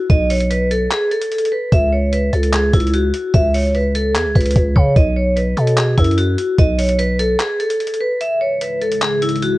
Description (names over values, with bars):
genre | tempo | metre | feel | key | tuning
hip hop, trap | 148 BPM | 4/4 | half-time | unclear | A4 = 440 Hz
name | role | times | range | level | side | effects
vibraphone with hard mallets | melody | 0.0-9.6 s | E4 to E5 | -18 LUFS | equal | low-pass filter, ping-pong delay
growling 808-style bass | bass | 0.1-7.4 s | B1 to C#3 | -17 LUFS | equal | none
dusty soul sampler-style drum kit | drums | 0.1-9.5 s | handclaps, hi-hat, kick drum | -17 LUFS | equal | none
deep dark ambient pad | sustained chords | 8.6-9.6 s | C#3 to E4 | -24 LUFS | left 2 dB | chorus, built-in reverb
room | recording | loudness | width
little or no reverb | worn, warbling old tape, cassette tape, warbly pitch drift, nothing above 10.5 kHz | -14 LUFS | side -18 dB against mid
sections
0.0-9.6 A section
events
break 0.9-1.7, 7.4-8.2; kick muted 8.2-9.6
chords
0.0 B5; 1.7 N.C.; 5.0 B5; 8.2 C#madd9